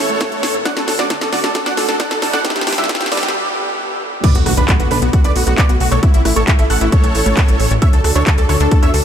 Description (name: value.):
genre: uplifting trance.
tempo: 134 BPM.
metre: 4/4.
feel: straight.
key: B minor.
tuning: A4 = 440 Hz.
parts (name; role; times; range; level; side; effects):
dense compressed supersaw; melody; 0.0-9.0 s; D4 to F#5; -20 LUFS; right 1 dB; sidechain pumping, tape echo.
dark baby grand piano; second line; 0.0-9.0 s; E5 to F#6; -24 LUFS; right 2 dB; sidechain pumping, tape echo.
dark studio string section; sustained chords; 0.0-9.0 s; D2 to A4; -25 LUFS; right 3 dB; stereo widening, sidechain pumping.
wide unison pluck; arpeggios; 0.0-9.0 s; G2 to D5; -24 LUFS; moving between left 7 dB and right 2 dB; auto-pan, sidechain pumping, tape echo.
riser and impact; sound effects; 0.3-6.0 s; none; -25 LUFS; equal; none.
techno drum kit; drums; 0.1-9.0 s; crash cymbal, handclaps, hi-hat, rim click, snare drum; -20 LUFS; equal; overdrive, sidechain pumping on hats, sidechain pumping on cymbals.
electronic kick drum; drums; 0.2-8.8 s; none; -13 LUFS; equal; overdrive, high-pass filter on kick.
tight sequencer bass; bass; 4.3-9.0 s; A1 to E2; -17 LUFS; equal; sidechain pumping.
room: moderate huge ambient reverb, RT60 6.4 s.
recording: dreamy mix soaked in reverb, high-pass filter.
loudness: -12 LUFS.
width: side -9 dB against mid.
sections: 0.0-4.2 A section; 4.2-9.0 B section.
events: build-up 0.0-4.2; drum fill 0.0-3.3; filter sweep on synth pluck 0.0-4.2; break 3.3-4.2; drop 4.2-9.0; impact 4.2-6.0.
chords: 0.0 A; 0.7 D; 2.4 G; 4.2 Bm7; 6.0 A; 7.8 D.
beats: 0.21 | 0.66 1.10 1.55 2.00 | 2.45 2.89 3.34 3.79 | 4.24 4.68 5.13 5.58 | 6.03 6.48 6.92 7.37 | 7.82 8.27 8.71.